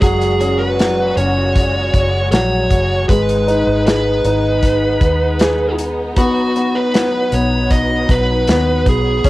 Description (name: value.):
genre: pop ballad.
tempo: 78 BPM.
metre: 4/4.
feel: straight.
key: unclear.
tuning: A4 = 440 Hz.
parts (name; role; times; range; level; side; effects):
smooth overdriven lead guitar; melody; 0.0-9.3 s; F#4 to D#5; -18 LUFS; right 1 dB; cassette tape.
warm grand piano; accompaniment; 0.0-9.3 s; F#3 to G#4; -19 LUFS; left 2 dB; cassette tape.
warm studio string section; sustained chords; 0.0-9.3 s; A#2 to F#4; -24 LUFS; equal; cassette tape.
vintage muted fingered electric bass; bass; 0.0-9.3 s; F#1 to D#2; -19 LUFS; equal; none.
natural country drum kit; drums; 0.0-9.3 s; hi-hat, kick drum, snare drum; -16 LUFS; equal; cassette tape.
room: light reverb.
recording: home recording on cassette.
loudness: -13 LUFS.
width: side -17 dB against mid.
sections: 0.0-9.3 A section.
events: none.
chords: 0.0 F#add9; 3.1 G#m; 6.2 B.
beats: | 0.02 0.79 1.55 2.32 | 3.09 3.86 4.63 5.40 | 6.17 6.94 7.71 8.48 | 9.25.